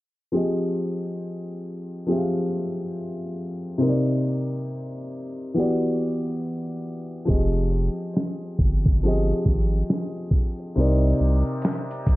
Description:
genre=lo-fi hip hop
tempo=69 BPM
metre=4/4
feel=swing 63% on 16ths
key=unclear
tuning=A4 = 442 Hz
part: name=bright upright piano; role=accompaniment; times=0.3-12.2 s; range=C3 to F5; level=-24 LUFS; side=left 1 dB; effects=none
part: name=saturated sub bass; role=bass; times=7.3-12.2 s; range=F1 to C2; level=-22 LUFS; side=equal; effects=none
part: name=dusty soul sampler-style drum kit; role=drums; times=7.3-12.2 s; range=hi-hat, kick drum, snare drum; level=-21 LUFS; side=equal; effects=none
room=light reverb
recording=low-pass filter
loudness=-22 LUFS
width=side -18 dB against mid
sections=0.3-12.2 A section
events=filter sweep 0.3-12.2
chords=0.3 Fm9; 3.8 Cm9; 5.5 Em9; 7.3 Fm9; 10.8 Cm9

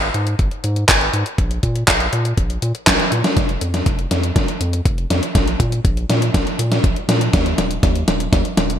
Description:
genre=italo disco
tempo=121 BPM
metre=4/4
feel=straight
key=unclear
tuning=A4 = 440 Hz
part: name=round analog bass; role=bass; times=0.0-8.8 s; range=Eb1 to Bb2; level=-21 LUFS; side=equal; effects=none
part: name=gated 80s digital drum machine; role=drums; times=0.0-8.8 s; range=handclaps, hi-hat, snare drum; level=-18 LUFS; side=equal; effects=gated reverb, gated reverb snare, overdrive
part: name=electronic kick drum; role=drums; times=0.4-8.4 s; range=none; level=-19 LUFS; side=equal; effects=none
room=light reverb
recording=bright 1980s-style digital production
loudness=-15 LUFS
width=side -10 dB against mid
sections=0.0-3.4 A section; 3.4-8.8 B section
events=drum fill 2.9-3.4, 3.4-8.8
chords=none

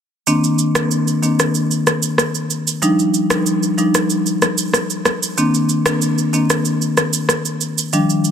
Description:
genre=afrobeats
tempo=94 BPM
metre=4/4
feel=straight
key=C minor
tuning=A4 = 439 Hz
part: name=marimba with medium mallets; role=accompaniment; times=0.3-8.2 s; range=Eb3 to Eb4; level=-16 LUFS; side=left 1 dB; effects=none
part: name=electronic shaker and rim click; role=drums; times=0.3-8.3 s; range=none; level=-18 LUFS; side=right 1 dB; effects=soft clipping on snare
room=moderate plate reverb, RT60 2.4 s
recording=dense, heavily limited modern master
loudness=-15 LUFS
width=side -8 dB against mid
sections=0.3-8.3 A section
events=none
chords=0.3 Cm9; 2.8 Ebmaj9; 5.4 Cm9

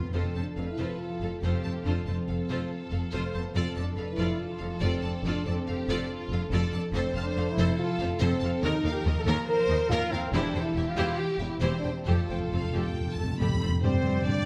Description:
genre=cinematic, heroic adventure film score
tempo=141 BPM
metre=4/4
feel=straight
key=F major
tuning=A4 = 439 Hz
part: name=mellow French horn section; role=sustained chords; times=0.0-14.5 s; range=B3 to Bb4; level=-35 LUFS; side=equal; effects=none
part: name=concert harp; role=arpeggios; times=0.0-14.5 s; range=F2 to C6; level=-39 LUFS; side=equal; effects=none
part: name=clear symphonic cello section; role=bass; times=0.0-13.7 s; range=Eb2 to F4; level=-35 LUFS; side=equal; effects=none
part: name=rich symphonic double bass section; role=bass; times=0.0-14.3 s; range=E1 to G2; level=-35 LUFS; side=equal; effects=none
part: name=timpani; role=percussion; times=0.0-0.1, 6.9-7.5, 12.1-13.8 s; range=F2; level=-35 LUFS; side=equal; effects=none
part: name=rich symphonic violin section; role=melody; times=0.1-14.5 s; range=Bb4 to B5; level=-42 LUFS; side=equal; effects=none
part: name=rich symphonic viola section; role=accompaniment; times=0.1-14.4 s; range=G3 to F5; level=-40 LUFS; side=equal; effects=none
part: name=warm symphonic violin section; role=second line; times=0.2-14.5 s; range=F4 to D5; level=-42 LUFS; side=equal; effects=none
part: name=bright concert flute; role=second line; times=13.8-14.5 s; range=C5 to D5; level=-39 LUFS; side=equal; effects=none
part: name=warm clarinet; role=second line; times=13.8-14.5 s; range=D5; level=-43 LUFS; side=equal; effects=none
part: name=warm oboe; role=second line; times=13.8-14.5 s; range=G5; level=-47 LUFS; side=equal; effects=none
part: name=dark trombone section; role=sustained chords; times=13.8-14.5 s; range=G3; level=-39 LUFS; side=equal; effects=none
room=wet scoring stage reverb, RT60 1.8 s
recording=none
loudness=-29 LUFS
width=mono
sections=0.1-13.8 A section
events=timpani fill 12.1-13.8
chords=0.1 F; 3.6 Dm/F; 8.6 Ebsus2; 10.3 C/E; 12.1 Fadd9; 13.8 Gsus4

